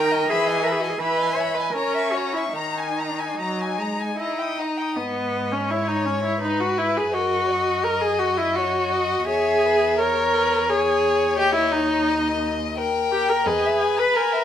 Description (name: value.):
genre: classical, slow romantic movement for string quartet.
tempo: 71-88 BPM.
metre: 3/4.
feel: rubato.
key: G# minor.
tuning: A4 = 440 Hz.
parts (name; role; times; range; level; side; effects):
rich violin; melody; 0.0-14.4 s; A#4 to D#6; -29 LUFS; left 10 dB; none.
rich violin; second line; 0.0-14.4 s; A#4 to B5; -27 LUFS; left 5 dB; none.
rich viola; accompaniment; 0.0-14.4 s; D#3 to B4; -22 LUFS; equal; none.
rich cello; bass; 0.0-14.0 s; D#2 to C#5; -29 LUFS; right 4 dB; none.
room: moderate large studio reverb, RT60 1.2 s.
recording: none.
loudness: -20 LUFS.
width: side -10 dB against mid.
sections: 0.0-5.0 A section; 5.0-14.4 B section.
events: none.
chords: 0.3 Emaj7; 1.7 A#dim/C#; 2.5 D#sus4; 4.2 D#; 5.0 G#m; 7.1 D#m/F#; 9.3 C#m/E; 11.4 D#; 13.5 Emaj7.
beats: | 0.28 0.99 1.74 | 2.54 3.37 4.17 | 4.97 5.69 6.41 | 7.13 7.83 8.55 | 9.27 9.98 10.69 | 11.38 12.07 12.77 | 13.46 14.15.